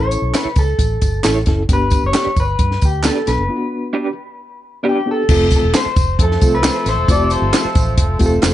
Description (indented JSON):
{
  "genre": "uptempo 1960s-style soul",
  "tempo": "133 BPM",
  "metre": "4/4",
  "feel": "straight",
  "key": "unclear",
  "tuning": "A4 = 436 Hz",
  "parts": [
    { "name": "electric guitar through a small old amp", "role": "melody", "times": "0.0-8.2 s", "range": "G4 to D5", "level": "-21 LUFS", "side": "left 2 dB", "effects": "none" },
    { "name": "reed electric piano", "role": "accompaniment", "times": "0.0-8.5 s", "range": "A3 to A4", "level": "-20 LUFS", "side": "left 1 dB", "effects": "fast tremolo" },
    { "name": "vintage muted fingered electric bass", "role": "bass", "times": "0.0-8.5 s", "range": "E1 to G2", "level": "-19 LUFS", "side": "equal", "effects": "none" },
    { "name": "compact cocktail drum kit", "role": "drums", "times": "0.1-8.5 s", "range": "crash cymbal, hi-hat, kick drum, snare drum", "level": "-16 LUFS", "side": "equal", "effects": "none" },
    { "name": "tambourine and handclaps", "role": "percussion", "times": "0.1-8.5 s", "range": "none", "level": "-26 LUFS", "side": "right 4 dB", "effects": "none" },
    { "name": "electric guitar through a small old amp", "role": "stabs", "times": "0.3-8.5 s", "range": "D4 to C#5", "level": "-23 LUFS", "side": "right 4 dB", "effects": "tremolo, plate reverb" },
    { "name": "dark horn section", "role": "second line", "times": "6.2-8.5 s", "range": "F3 to A4", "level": "-23 LUFS", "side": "right 2 dB", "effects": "plate reverb" }
  ],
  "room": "light reverb",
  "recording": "nothing above 10.4 kHz",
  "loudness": "-13 LUFS",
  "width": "side -13 dB against mid",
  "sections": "0.0-5.3 A section; 5.3-8.5 B section",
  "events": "break 3.5-5.3",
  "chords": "0.0 A; 1.7 G; 5.3 F"
}